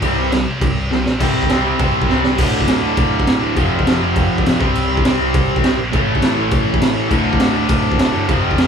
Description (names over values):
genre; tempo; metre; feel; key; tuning
punk rock; 203 BPM; 4/4; straight; D minor; A4 = 440 Hz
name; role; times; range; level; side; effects
cranked stack guitar; riff; 0.0-8.7 s; D2 to C4; -21 LUFS; left 8 dB; overdrive
raw garage guitar; riff; 0.0-8.7 s; D2 to C4; -20 LUFS; right 5 dB; overdrive
scooped high-gain guitar; riff; 0.0-8.7 s; D2 to C4; -23 LUFS; right 1 dB; distortion
overdriven picked electric bass; bass; 0.0-8.7 s; D1 to A2; -25 LUFS; equal; none
raw garage drum kit; drums; 0.0-8.7 s; crash cymbal, kick drum, snare drum; -17 LUFS; equal; none
room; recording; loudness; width
light reverb; band playing live in one room; -14 LUFS; side -7 dB against mid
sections
0.0-1.2 A section; 1.2-2.4 B section; 2.4-8.7 C section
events
drum fill 0.9, 2.1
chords
0.0 C5; 2.4 D5; 3.6 F5; 4.6 C5; 5.9 A5; 7.1 D5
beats
| 0.02 0.32 0.61 0.91 | 1.21 1.50 1.80 2.09 | 2.39 2.68 2.98 3.27 | 3.57 3.86 4.16 4.45 | 4.75 5.04 5.34 5.63 | 5.93 6.22 6.52 6.81 | 7.11 7.40 7.70 7.99 | 8.29 8.58